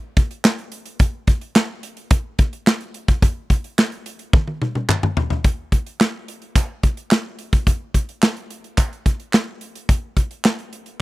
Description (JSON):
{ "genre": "funk", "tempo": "108 BPM", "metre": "4/4", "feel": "straight", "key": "none", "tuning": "none", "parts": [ { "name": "modern studio drum kit", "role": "drums", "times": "0.2-11.0 s", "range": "hi-hat, kick drum, snare drum, toms", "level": "-16 LUFS", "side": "equal", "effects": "none" }, { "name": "group handclap", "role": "percussion", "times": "0.4-10.6 s", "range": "none", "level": "-24 LUFS", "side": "right 3 dB", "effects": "none" } ], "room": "little or no reverb", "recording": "dry, close 1970s-style studio recording", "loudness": "-18 LUFS", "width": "side -19 dB against mid", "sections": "0.0-5.4 A section; 5.4-11.0 B section", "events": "drum fill 4.3-5.4", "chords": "none" }